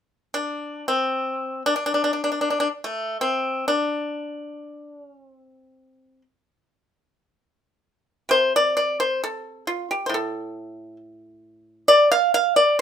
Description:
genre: chinese traditional, Chinese solo plucked strings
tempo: free time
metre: none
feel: none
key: D yu mode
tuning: A4 = 441 Hz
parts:
  - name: pipa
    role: solo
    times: 0.3-12.8 s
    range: A2 to F5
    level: -20 LUFS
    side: equal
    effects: none
room: light reverb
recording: minimal, uncompressed stereo recording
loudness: -20 LUFS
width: side -8 dB against mid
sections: 0.0-8.3 A section; 8.3-12.8 B section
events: none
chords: none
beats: free time

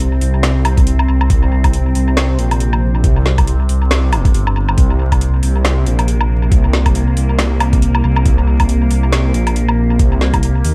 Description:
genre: deep dubstep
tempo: 138 BPM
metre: 4/4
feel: swing 58% on 16ths, half-time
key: unclear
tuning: A4 = 440 Hz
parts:
  - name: overtone-sweeping drone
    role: sustained chords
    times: 0.0-10.7 s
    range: C3 to C4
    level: -24 LUFS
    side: equal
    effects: chorus, built-in reverb, phaser
  - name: dark detuned saw bass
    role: bass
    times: 0.0-10.7 s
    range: G1 to Eb2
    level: -16 LUFS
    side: equal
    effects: none
  - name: garage drum kit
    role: drums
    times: 0.0-10.7 s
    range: hi-hat, snare drum, woodblock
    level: -23 LUFS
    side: equal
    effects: overdrive, tape echo
  - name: electronic kick drum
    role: drums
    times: 0.8-10.4 s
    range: none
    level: -17 LUFS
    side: equal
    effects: none
room: digital ambience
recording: echo-heavy mix, vinyl crackle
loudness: -14 LUFS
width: mono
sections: 0.0-10.7 A section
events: none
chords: 0.0 C5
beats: 0.00 0.43 0.86 | 1.30 1.73 2.17 2.60 | 3.04 3.47 3.91 4.34 | 4.78 5.21 5.65 6.08 | 6.52 6.95 7.39 7.82 | 8.26 8.69 9.13 9.56 | 9.99 10.43

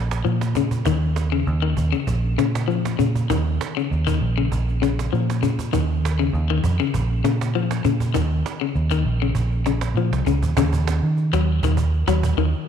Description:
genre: afrobeat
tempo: 99 BPM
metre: 4/4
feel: straight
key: Eb minor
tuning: A4 = 440 Hz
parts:
  - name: vintage muted fingered electric bass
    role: bass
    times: 0.0-12.5 s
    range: Bb1 to Eb3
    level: -21 LUFS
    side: right 2 dB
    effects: transformer saturation
  - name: cajon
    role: drums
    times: 0.1-12.6 s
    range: none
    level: -29 LUFS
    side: right 8 dB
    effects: none
  - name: electric guitar at the edge of break-up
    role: arpeggios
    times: 0.2-12.7 s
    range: Db3 to Gb3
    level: -24 LUFS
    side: left 9 dB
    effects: harmonic tremolo, slapback echo
room: light reverb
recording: 1960s-style stereo with parts hard left and right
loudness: -19 LUFS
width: side -8 dB against mid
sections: 0.0-10.6 A section; 10.6-12.7 B section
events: none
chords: 0.0 Bbm; 0.9 Dbsus2/Eb; 2.1 Bbm; 3.3 Eb5; 4.5 Bbm; 5.7 Dbsus2/Eb; 6.9 Bbm; 8.1 Eb5; 9.4 Bbm; 10.6 Ebm7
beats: 0.26 | 0.86 1.47 2.08 2.68 | 3.29 3.90 4.50 5.11 | 5.72 6.32 6.93 7.54 | 8.14 8.75 9.36 9.96 | 10.57 11.17 11.78 12.38

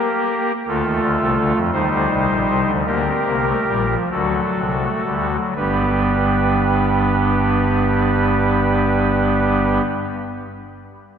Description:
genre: classical, baroque-style 4-part fugue for pipe organ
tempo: 38-58 BPM (dotted quarters)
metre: 6/8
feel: straight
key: unclear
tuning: A4 = 441 Hz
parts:
  - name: pipe organ, soft reed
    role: solo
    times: 0.0-9.8 s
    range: G1 to C5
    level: -16 LUFS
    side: equal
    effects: none
room: wet church reverb, RT60 3.1 s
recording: none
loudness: -16 LUFS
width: side -8 dB against mid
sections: 0.0-5.6 A section; 5.6-11.2 B section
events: slowing down 0.0-5.6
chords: 0.0 Gm/Bb; 0.7 Dm; 1.7 Cm; 2.9 Gm; 4.1 D7; 5.6 G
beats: | 0.67 1.73 | 2.87 4.13 | 5.57 7.12 | 8.67

